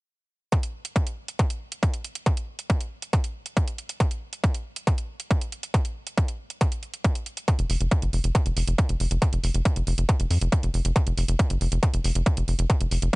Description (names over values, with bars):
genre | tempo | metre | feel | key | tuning
psychedelic trance | 138 BPM | 4/4 | straight | unclear | A4 = 439 Hz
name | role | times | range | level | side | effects
electronic hi-hat | drums | 0.5-13.2 s | none | -35 LUFS | right 3 dB | overdrive
electronic kick drum | drums | 0.5-13.2 s | none | -22 LUFS | equal | distortion, overdrive
tight sequencer bass | bass | 7.6-13.1 s | F1 to F2 | -23 LUFS | equal | none
room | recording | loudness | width
little or no reverb | dark, warm production, nothing above 10.4 kHz | -23 LUFS | side -25 dB against mid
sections
0.5-13.2 A section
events
none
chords
none